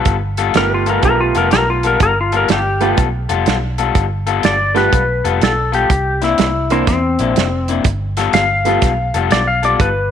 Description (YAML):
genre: electric blues shuffle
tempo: 123 BPM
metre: 4/4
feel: swing 66% on 8ths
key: G mixolydian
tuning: A4 = 439 Hz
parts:
  - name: clean lap steel guitar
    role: melody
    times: 0.0-10.1 s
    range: C4 to F5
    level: -16 LUFS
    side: left 2 dB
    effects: slapback echo
  - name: electric guitar through a small old amp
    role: riff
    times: 0.0-9.9 s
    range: C3 to A4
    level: -19 LUFS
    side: left 11 dB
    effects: none
  - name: vintage muted fingered electric bass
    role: bass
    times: 0.1-10.1 s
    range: F1 to E2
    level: -20 LUFS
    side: right 1 dB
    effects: none
  - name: warm soul drum kit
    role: drums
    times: 0.1-9.9 s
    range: hi-hat, kick drum, snare drum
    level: -18 LUFS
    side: right 4 dB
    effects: none
  - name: bright concert grand piano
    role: accompaniment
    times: 0.6-8.8 s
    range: A3 to G4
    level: -20 LUFS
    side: right 12 dB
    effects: none
room: light reverb, small room ambience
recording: 1960s-style stereo with parts hard left and right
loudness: -13 LUFS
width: side -9 dB against mid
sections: 0.0-10.1 A section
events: none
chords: 0.0 G9; 5.9 C9; 7.8 G9